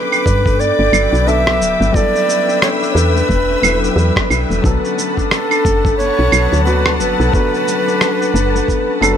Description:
organic downtempo; 89 BPM; 4/4; swing 59% on 16ths; B minor; A4 = 442 Hz
bright Native American-style cedar flute; melody; 0.0-9.2 s; A4 to E5; -18 LUFS; right 2 dB; ping-pong delay
felt-muted upright piano; accompaniment; 0.0-9.2 s; D3 to B4; -25 LUFS; left 2 dB; sidechain pumping, digital delay
rich symphonic string section; sustained chords; 0.0-9.2 s; B4 to E6; -22 LUFS; left 2 dB; sidechain pumping
concert harp; arpeggios; 0.0-9.2 s; F#3 to A4; -19 LUFS; left 3 dB; digital delay
electronic claves, shaker and rim click; drums; 0.1-9.2 s; -18 LUFS; right 3 dB
woody FM bass; bass; 0.3-9.2 s; D1 to G2; -16 LUFS; equal; tube saturation, sidechain pumping
electronic kick drum; drums; 0.3-8.8 s; -17 LUFS; equal
light reverb, small room ambience; -12 LUFS; side -8 dB against mid
0.0-9.2 A section
0.0 G; 1.9 Em; 4.6 Bm7

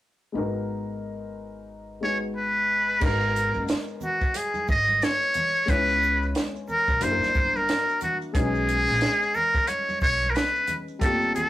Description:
hip hop, jazz-hop; 90 BPM; 4/4; swing 60% on 16ths; G# minor; A4 = 440 Hz
dark upright piano; accompaniment; 0.3-11.5 s; F#3 to C#5; -32 LUFS; left 2 dB
upright bass; bass; 0.4-11.5 s; F#1 to C#2; -32 LUFS; equal
trumpet with metal mute; melody; 2.0-11.5 s; F#4 to D#5; -23 LUFS; equal
compact cocktail drum kit; drums; 3.0-11.5 s; crash cymbal, hi-hat, kick drum, shaker, snare drum; -27 LUFS; right 1 dB
maracas and congas; percussion; 3.0-11.5 s; -40 LUFS; right 1 dB
moderate studio reverb, RT60 0.5 s; rough rehearsal-room recording, warm saturation; -22 LUFS; side -14 dB against mid
0.3-3.0 A section; 3.0-11.5 B section
0.3 G#m9; 5.7 C#m7; 7.0 F#aug7; 8.3 B69

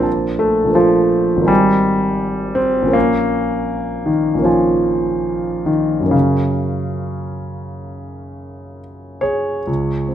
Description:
classical, impressionist solo piano; 64-85 BPM; 4/4; rubato; A4 = 441 Hz
warm concert grand piano; solo; 0.0-10.1 s; G#1 to A5; -15 LUFS; equal
light reverb; -14 LUFS; side -10 dB against mid
0.0-9.7 A section
0.1 Bbmaj9; 1.5 G#maj9; 2.9 Bbm7; 6.1 Gbmaj7

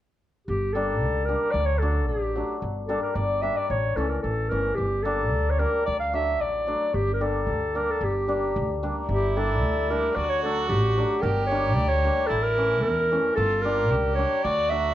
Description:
klezmer; 112 BPM; 2/4; straight; G dorian sharp4; A4 = 440 Hz
warm clarinet; melody; 0.5-14.9 s; G4 to F5; -25 LUFS; equal; slapback echo, plate reverb
upright bass; bass; 0.5-14.9 s; G1 to E2; -27 LUFS; right 1 dB
hammered dulcimer; accompaniment; 0.7-14.9 s; E3 to D4; -30 LUFS; left 3 dB
warm violin; second line; 9.1-14.9 s; E4 to G4; -31 LUFS; right 4 dB
light reverb; worn, warbling old tape, cassette tape, warbly pitch drift; -22 LUFS; side -12 dB against mid
0.5-9.1 A section; 9.1-14.9 A section
0.5 Gm; 1.6 D; 2.6 Gm; 3.7 A; 4.8 Gm; 5.9 D; 6.9 Gm; 10.2 D; 11.2 Gm; 12.3 A; 13.4 Gm

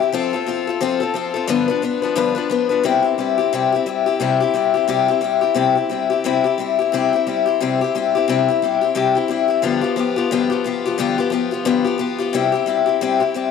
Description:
rock; 177 BPM; 4/4; swing 59% on 8ths; C major; A4 = 440 Hz
picked acoustic archtop guitar; solo; 0.0-13.5 s; G2 to B4; -16 LUFS; left 7 dB
moderate plate reverb, RT60 3.5 s; -16 LUFS; side -6 dB against mid
0.0-2.8 A section; 2.8-13.5 B section
0.1 F; 1.5 G7; 2.8 C; 9.6 G7; 12.3 C

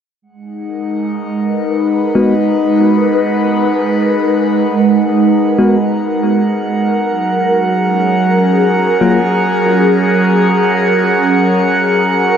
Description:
ambient; free time; G# minor; A4 = 440 Hz
airy breathy pad; sustained chords; 0.5-12.4 s; F#3 to B4; -12 LUFS; equal; chorus, phaser
drifting glass-harmonics texture; texture; 0.6-12.4 s; F#5; -19 LUFS; right 2 dB; chorus, built-in reverb
bell-like tine electric piano; stabs; 2.2-9.2 s; F#3 to F#4; -18 LUFS; left 2 dB; low-pass filter, dub echo
wet huge ambient reverb, RT60 7.3 s; -11 LUFS; side -8 dB against mid
0.2-12.4 A section
0.2 G#m7; 7.1 F#

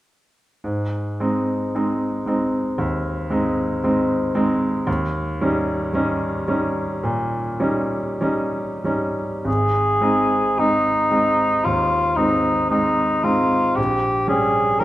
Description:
classical, romantic duo for cor anglais and grand piano; 46-58 BPM; 4/4; rubato; Ab major; A4 = 438 Hz
bright grand piano; accompaniment; 0.6-14.8 s; Ab1 to G4; -20 LUFS; equal
mellow cor anglais; melody; 9.5-14.8 s; Eb4 to Bb4; -18 LUFS; equal
wet recital hall reverb, RT60 1.6 s; dark, warm production; -18 LUFS; side -15 dB against mid
0.6-9.5 A section; 9.5-14.8 B section
0.6 Ab; 4.9 Eb7; 9.5 Ab; 13.8 Gdim/Bb

